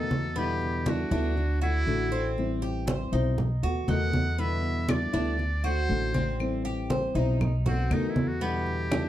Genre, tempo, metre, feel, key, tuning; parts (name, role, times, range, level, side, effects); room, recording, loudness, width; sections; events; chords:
latin, Cuban son and guajira; 119 BPM; 4/4; straight; E minor; A4 = 441 Hz
trumpet with metal mute; melody; 0.0-9.1 s; C4 to F#5; -33 LUFS; right 1 dB
nylon-string guitar; accompaniment; 0.0-9.1 s; B2 to F#4; -31 LUFS; left 2 dB
Cuban tres; arpeggios; 0.0-9.1 s; B3 to C5; -34 LUFS; right 2 dB
upright bass; bass; 0.0-9.1 s; A1 to E2; -29 LUFS; equal
congas; percussion; 0.1-9.1 s; -31 LUFS; equal
claves; percussion; 4.9-9.1 s; -42 LUFS; left 6 dB
moderate studio reverb, RT60 0.5 s; dark, warm production; -25 LUFS; side -12 dB against mid
0.0-9.1 A section
muted trumpet solo 0.0-9.1
0.4 Em7; 1.4 D; 2.4 Am7; 3.4 B7; 4.4 Em7; 5.4 D; 6.4 Am7; 7.4 B7; 8.4 Em7